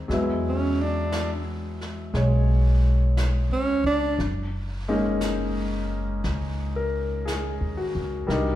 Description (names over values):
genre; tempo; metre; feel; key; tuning
jazz ballad; 59 BPM; 4/4; swing 67% on 8ths; unclear; A4 = 441 Hz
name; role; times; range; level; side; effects
clear baby grand piano; accompaniment; 0.0-8.6 s; F#3 to Db5; -28 LUFS; left 2 dB; none
upright bass; bass; 0.0-8.6 s; Gb1 to E2; -25 LUFS; equal; none
jazz brush drum kit; drums; 0.1-8.6 s; brushed snare drum, hi-hat, snare drum; -38 LUFS; right 2 dB; none
breathy tenor saxophone; melody; 0.5-4.2 s; Db4 to D4; -25 LUFS; right 2 dB; none
room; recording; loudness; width
moderate recital hall reverb, RT60 1.4 s; recorded in a church or concert hall; -22 LUFS; side -13 dB against mid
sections
0.0-8.6 A section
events
tenor saxophone solo 0.0-8.6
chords
0.1 E9; 4.2 Gb69